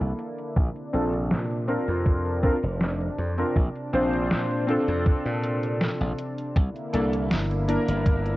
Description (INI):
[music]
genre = vaporwave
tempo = 80 BPM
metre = 4/4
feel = straight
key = Bb lydian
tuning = A4 = 440 Hz
[part]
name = clear electric grand piano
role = accompaniment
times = 0.0-8.4 s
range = Bb3 to C5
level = -27 LUFS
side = equal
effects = analog chorus, analog delay
[part]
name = lush unison pad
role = sustained chords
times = 0.0-8.4 s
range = C3 to E4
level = -32 LUFS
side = equal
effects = chorus
[part]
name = glassy slap bass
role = bass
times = 0.0-8.4 s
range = F1 to Bb2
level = -27 LUFS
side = equal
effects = none
[part]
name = detuned 8-bit digital drum machine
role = drums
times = 0.0-8.4 s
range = hi-hat, snare drum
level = -29 LUFS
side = equal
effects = overdrive
[part]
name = electronic kick drum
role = drums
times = 0.6-8.2 s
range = none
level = -21 LUFS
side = equal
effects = none
[sound]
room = moderate plate reverb, RT60 1.8 s, digital ambience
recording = worn, warbling old tape, cassette tape, warbly pitch drift, low-pass filter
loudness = -23 LUFS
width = side -17 dB against mid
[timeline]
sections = 0.0-8.4 A section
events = filter sweep 0.0-8.4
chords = 0.0 C13; 0.6 Bbmaj9; 6.6 C9